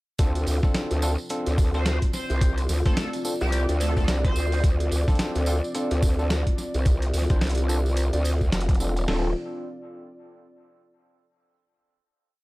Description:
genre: glitch hop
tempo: 108 BPM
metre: 4/4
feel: swing 59% on 16ths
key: D minor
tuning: A4 = 440 Hz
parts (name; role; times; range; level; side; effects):
- dark analog pad; sustained chords; 0.2-9.3 s; C4 to D5; -33 LUFS; equal; chorus, sidechain pumping
- overdriven tine electric piano; stabs; 0.2-9.3 s; C4 to D5; -32 LUFS; equal; sidechain pumping, dub echo
- growl bass; bass; 0.2-9.3 s; D1 to D2; -24 LUFS; equal; chorus, overdrive
- boom bap sampler-style drum kit; drums; 0.2-9.2 s; hi-hat, kick drum, snare drum; -23 LUFS; equal; none
- boom bap sampler-style drum kit; drums; 0.2-9.1 s; hi-hat, snare drum; -32 LUFS; equal; none
- tambourine; percussion; 0.2-9.1 s; none; -39 LUFS; right 3 dB; none
- sync lead; melody; 1.7-4.6 s; G4 to C5; -33 LUFS; equal; lush chorus, cassette tape, dub echo
room: light reverb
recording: dark, warm production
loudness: -21 LUFS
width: side -20 dB against mid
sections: 0.2-9.1 drop; 9.1-11.3 final chord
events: drop 0.2-9.1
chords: 0.2 Dm7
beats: | 0.19 0.75 1.30 1.86 | 2.42 2.97 3.53 4.08 | 4.64 5.19 5.75 6.30 | 6.86 7.42 7.97 8.53 | 9.08

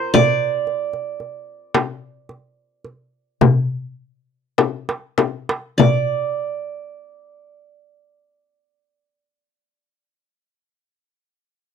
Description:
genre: Arabic maqam ensemble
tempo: 96-116 BPM (eighths)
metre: 10/8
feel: straight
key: unclear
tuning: A4 = 440 Hz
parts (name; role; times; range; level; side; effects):
- qanun; melody; 0.0-9.8 s; Bb4 to D5; -20 LUFS; right 6 dB; none
- darbuka; percussion; 0.1-6.4 s; none; -20 LUFS; right 3 dB; none
- frame drum; percussion; 0.1-6.4 s; none; -18 LUFS; left 9 dB; none
room: little or no reverb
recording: dry, close 1970s-style studio recording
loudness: -18 LUFS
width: side -7 dB against mid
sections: 0.0-5.8 A section; 5.8-11.7 B section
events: slowing down 0.0-5.8; drum fill 4.6-5.8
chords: none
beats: | 0.14 0.67 1.20 1.74 2.29 2.84 3.41 3.99 4.58 5.18 | 5.79 6.40 7.03 7.65 8.27 8.90 9.52

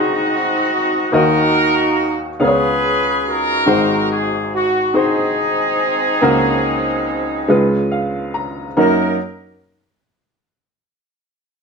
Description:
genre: gospel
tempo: 47 BPM (dotted quarters)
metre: 6/8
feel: straight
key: F# major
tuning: A4 = 440 Hz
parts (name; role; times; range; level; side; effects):
- clear horn section; melody; 0.0-9.2 s; B#3 to B4; -17 LUFS; equal; none
- warm upright piano; accompaniment; 0.0-9.2 s; G#1 to A#5; -17 LUFS; left 1 dB; none
room: wet studio reverb, RT60 0.7 s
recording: band playing live in one room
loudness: -14 LUFS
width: side -5 dB against mid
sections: 0.0-3.7 A section; 3.7-8.8 B section; 8.8-11.3 C section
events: upright piano fill 7.5-8.8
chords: 0.0 G#7; 1.1 D#m; 2.4 C#7; 3.7 G#7; 6.2 F#/C#; 7.5 C#7; 8.8 F#6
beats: | 1.12 2.40 | 3.67 4.95 | 6.22 7.50 | 8.77

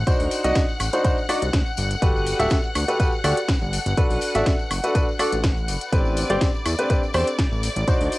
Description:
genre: piano house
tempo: 123 BPM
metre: 4/4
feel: swing 54% on 16ths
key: A dorian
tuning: A4 = 439 Hz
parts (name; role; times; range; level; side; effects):
- clear studio string section; sustained chords; 0.0-8.2 s; D5 to F#6; -31 LUFS; left 2 dB; sidechain pumping, cassette tape
- fat analog bass; bass; 0.0-8.1 s; D1 to E2; -25 LUFS; equal; tube saturation, sidechain pumping
- warbly tape-like pad; texture; 0.8-8.2 s; C4 to B5; -42 LUFS; equal; none
- clear grand piano; riff; 0.1-8.2 s; C4 to E5; -23 LUFS; equal; sidechain pumping, low-pass filter, cassette tape, analog delay
- electronic kick drum; drums; 0.1-8.0 s; none; -22 LUFS; equal; none
- house drum kit; drums; 0.1-8.2 s; hi-hat, snare drum, woodblock; -28 LUFS; equal; none
- tambourine; percussion; 0.1-8.2 s; none; -35 LUFS; left 8 dB; none
room: little or no reverb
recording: home recording on cassette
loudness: -19 LUFS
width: side -19 dB against mid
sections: 0.0-8.2 A section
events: none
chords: 0.1 D7b9; 1.8 Gmaj9; 4.0 Bm7; 5.9 Am11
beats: | 0.07 0.56 1.05 1.53 | 2.02 2.51 3.00 3.48 | 3.97 4.46 4.95 5.44 | 5.92 6.41 6.90 7.39 | 7.88

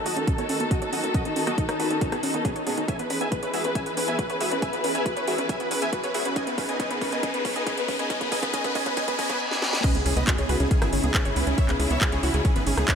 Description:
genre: uplifting trance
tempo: 138 BPM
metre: 4/4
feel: straight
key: C# minor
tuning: A4 = 440 Hz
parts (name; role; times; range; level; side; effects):
- dense compressed supersaw; melody; 0.0-12.9 s; B3 to G#5; -29 LUFS; equal; sidechain pumping, low-pass filter, ping-pong delay
- dark studio string section; sustained chords; 0.0-12.9 s; C#3 to B4; -30 LUFS; left 2 dB; sidechain pumping
- tight sequencer bass; bass; 0.0-12.8 s; D#1 to E2; -30 LUFS; equal; sidechain pumping, high-pass filter
- wide unison pluck; arpeggios; 0.1-12.9 s; B3 to C#5; -31 LUFS; right 2 dB; sidechain pumping, ping-pong delay
- house drum kit; drums; 0.1-12.9 s; crash cymbal, handclaps, hi-hat, rim click, snare drum; -30 LUFS; right 1 dB; none
- electronic kick drum; drums; 0.3-12.9 s; none; -26 LUFS; equal; none
- riser, reverse cymbal and impact; sound effects; 5.1-11.6 s; none; -33 LUFS; left 2 dB; none
room: moderate huge ambient reverb, RT60 7.1 s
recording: dreamy mix soaked in reverb, high-pass filter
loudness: -22 LUFS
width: side -7 dB against mid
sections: 0.0-9.8 A section; 9.8-12.9 B section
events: build-up 0.0-9.8; filter sweep on supersaw synth 0.0-9.8; filter sweep on synth pluck 0.0-9.8; filter sweep 0.0-9.8; drum fill 2.9-9.4, 9.5-9.8; riser 5.1-9.4; reverse cymbal 9.0-9.8; drop 9.8-12.9; impact 9.8-11.6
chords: 0.0 D#dim; 2.9 E; 6.4 G#m/D#; 9.8 C#madd9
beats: 0.28 0.71 | 1.15 1.58 2.01 2.45 | 2.88 3.32 3.75 4.19 | 4.62 5.06 5.49 5.93 | 6.36 6.80 7.23 7.67 | 8.10 8.54 8.97 9.41 | 9.84 10.28 10.71 11.14 | 11.58 12.01 12.45 12.88

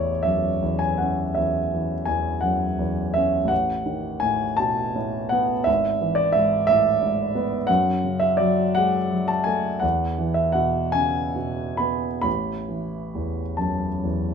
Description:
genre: classical, romantic nocturne for solo piano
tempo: 44-61 BPM (dotted quarters)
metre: 12/8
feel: rubato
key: A major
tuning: A4 = 440 Hz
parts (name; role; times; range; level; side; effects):
- warm grand piano; solo; 0.0-14.3 s; G#1 to B5; -20 LUFS; equal; none
room: moderate large studio reverb, RT60 1.3 s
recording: minimal, uncompressed stereo recording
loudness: -20 LUFS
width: side -6 dB against mid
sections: 0.0-14.3 A section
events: none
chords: 0.0 A; 3.5 B7/A; 5.7 E/G#; 7.7 F#m; 9.8 E; 12.3 A5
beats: 0.25 1.37 2.43 | 3.51 4.59 5.67 6.69 | 7.69 8.77 9.83 10.95 | 12.25 13.60

